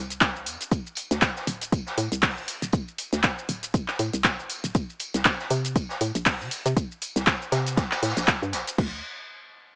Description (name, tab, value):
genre	deep house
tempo	119 BPM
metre	4/4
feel	swing 56% on 16ths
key	unclear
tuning	A4 = 440 Hz
part	hollow knocking FM bass	bass	0.0-9.0 s	D1 to C3	-27 LUFS	equal	sidechain pumping
part	deep house drum kit	drums	0.1-8.9 s	crash cymbal, handclaps, hi-hat, shaker	-26 LUFS	equal	none
part	electronic kick drum	drums	0.2-8.9 s	none	-24 LUFS	equal	none
part	raw garage drum kit	drums	0.2-8.7 s	hi-hat, snare drum, tambourine	-33 LUFS	equal	high-pass filter on hats, high-pass filter on snare, high-pass filter on perc, high-pass filter on room
room	small room ambience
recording	dry, gritty hardware recording, vinyl crackle, small speaker sound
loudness	-23 LUFS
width	side -33 dB against mid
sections	0.0-8.8 A section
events	drop 0.0-8.8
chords	none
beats	0.21 | 0.72 1.22 1.72 2.23 | 2.73 3.24 3.74 4.25 | 4.75 5.25 5.76 6.26 | 6.77 7.27 7.77 8.28 | 8.78